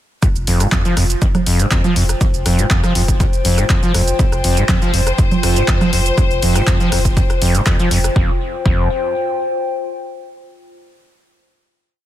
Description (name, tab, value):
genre	acid house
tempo	121 BPM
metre	4/4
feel	straight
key	unclear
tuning	A4 = 440 Hz
part	overdriven acid bass	riff	0.2-8.9 s	F2 to F3	-18 LUFS	equal	distortion, tube saturation, lush chorus, sidechain pumping, digital delay
part	electronic kick drum	drums	0.2-8.8 s	none	-16 LUFS	equal	none
part	punchy analog drum machine	drums	0.2-8.1 s	congas, handclaps, hi-hat, rim click, shaker	-20 LUFS	right 2 dB	overdrive
part	warbly tape-like pad	texture	0.2-10.1 s	F4 to G5	-23 LUFS	left 2 dB	chorus, built-in reverb, sidechain pumping
part	warm sub bass	bass	0.4-8.9 s	F1	-20 LUFS	equal	tube saturation, sidechain pumping
part	rich studio string section	sustained chords	4.2-8.2 s	C5	-24 LUFS	left 4 dB	sidechain pumping
room	digital ambience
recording	dense, heavily limited modern master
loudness	-13 LUFS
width	side -12 dB against mid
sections	0.2-8.2 drop; 8.2-10.1 final chord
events	drop 0.2-8.2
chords	0.2 F5